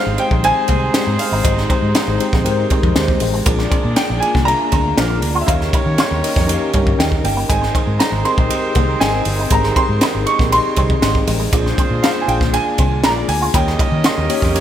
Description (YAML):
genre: polished 1980s jazz-funk pop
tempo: 119 BPM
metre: 4/4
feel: straight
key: Ab major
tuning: A4 = 440 Hz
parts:
  - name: warm baby grand piano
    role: melody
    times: 0.0-14.6 s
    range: Eb5 to Db6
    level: -20 LUFS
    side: right 1 dB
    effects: lush chorus, digital delay
  - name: warm horn section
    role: second line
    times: 0.0-14.6 s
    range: C4 to F5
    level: -25 LUFS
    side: right 2 dB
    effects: none
  - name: mellow tine electric piano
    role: accompaniment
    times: 0.0-14.6 s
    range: Ab3 to F5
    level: -22 LUFS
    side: left 2 dB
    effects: medium stereo tremolo, wide subtle chorus
  - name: muted studio string section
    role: sustained chords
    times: 0.0-14.6 s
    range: Eb3 to Bb4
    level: -30 LUFS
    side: equal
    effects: none
  - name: electric guitar with an envelope filter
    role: riff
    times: 0.1-14.5 s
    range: Ab3 to F4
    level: -26 LUFS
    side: right 3 dB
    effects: lush chorus
  - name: vintage muted fingered electric bass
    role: bass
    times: 0.1-14.6 s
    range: G1 to Eb3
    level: -20 LUFS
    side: equal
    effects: none
  - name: crisp fusion drum kit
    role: drums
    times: 0.2-14.6 s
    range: hi-hat, kick drum, ride cymbal, snare drum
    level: -18 LUFS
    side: equal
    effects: gated reverb
room: light reverb, studio reverb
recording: bright 1980s-style digital production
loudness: -14 LUFS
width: side -10 dB against mid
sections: 0.0-14.6 A section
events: none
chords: 0.0 Abmaj7; 3.5 Bb7; 5.5 Eb7; 7.5 Abmaj7; 11.5 Bb7; 13.5 Eb7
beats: 0.44 0.94 | 1.45 1.95 2.46 2.96 | 3.46 3.97 4.47 4.98 | 5.48 5.98 6.49 6.99 | 7.50 8.00 8.51 9.01 | 9.51 10.02 10.52 11.03 | 11.53 12.03 12.54 13.04 | 13.54 14.05 14.55